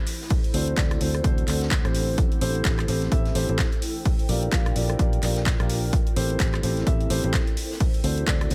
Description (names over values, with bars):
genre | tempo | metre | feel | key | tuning
piano house | 128 BPM | 4/4 | swing 59% on 16ths | unclear | A4 = 440 Hz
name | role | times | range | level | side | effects
granular cloud pad | texture | 0.0-8.5 s | D4 to G5 | -37 LUFS | equal | built-in reverb, sidechain pumping
house drum kit | drums | 0.1-8.5 s | handclaps, hi-hat, rim click | -33 LUFS | equal | none
vintage drum kit | drums | 0.1-8.5 s | hi-hat, snare drum | -44 LUFS | equal | none
electronic kick drum | drums | 0.3-8.4 s | none | -26 LUFS | equal | none
dark grand piano | riff | 0.5-8.5 s | C4 to F5 | -32 LUFS | equal | sidechain pumping, dub echo
fingered electric bass | bass | 0.5-8.5 s | A1 to D2 | -29 LUFS | equal | tube saturation, sidechain pumping
room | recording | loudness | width
small room reverb | none | -23 LUFS | mono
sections
0.0-8.5 A section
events
none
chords
0.3 D7; 1.9 Am7; 4.1 Bb6; 5.9 Am7; 7.8 D7